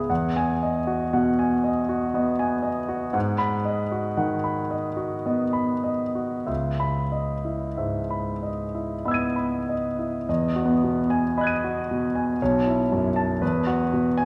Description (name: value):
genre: classical, impressionist solo piano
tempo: 45-60 BPM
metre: 3/4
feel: rubato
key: unclear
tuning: A4 = 439 Hz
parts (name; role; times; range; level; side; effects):
- clear concert grand piano; solo; 0.0-14.2 s; B1 to D#7; -25 LUFS; equal; none
room: wet scoring stage reverb, RT60 1.9 s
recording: heard from further back in the room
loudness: -25 LUFS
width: mono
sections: 0.0-10.3 A section; 10.3-14.2 B section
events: none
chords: 0.1 Emaj9; 3.2 G#m7; 6.5 C#m9; 10.3 Emaj9; 12.4 B9sus4; 13.4 Esus2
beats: | 0.10 1.13 2.15 | 3.15 4.18 5.26 | 6.49 7.80 9.08 | 10.29 11.37 12.40 | 13.42